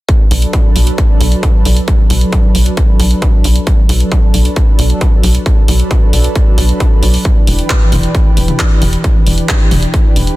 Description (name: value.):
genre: uplifting trance.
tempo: 134 BPM.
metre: 4/4.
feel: straight.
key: B minor.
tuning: A4 = 439 Hz.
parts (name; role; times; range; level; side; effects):
lush unison pad; sustained chords; 0.1-10.4 s; E3 to B4; -18 LUFS; equal; chorus, sidechain pumping.
electronic kick drum; drums; 0.1-10.0 s; none; -11 LUFS; equal; distortion.
punchy analog drum machine; drums; 0.1-10.4 s; handclaps, hi-hat, toms; -19 LUFS; equal; none.
tight sequencer bass; bass; 0.3-10.3 s; E1 to B1; -12 LUFS; equal; sidechain pumping.
room: little or no reverb.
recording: dense, heavily limited modern master.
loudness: -8 LUFS.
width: side -18 dB against mid.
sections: 0.1-10.4 A section.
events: none.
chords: 0.1 Bm7; 7.2 Em7.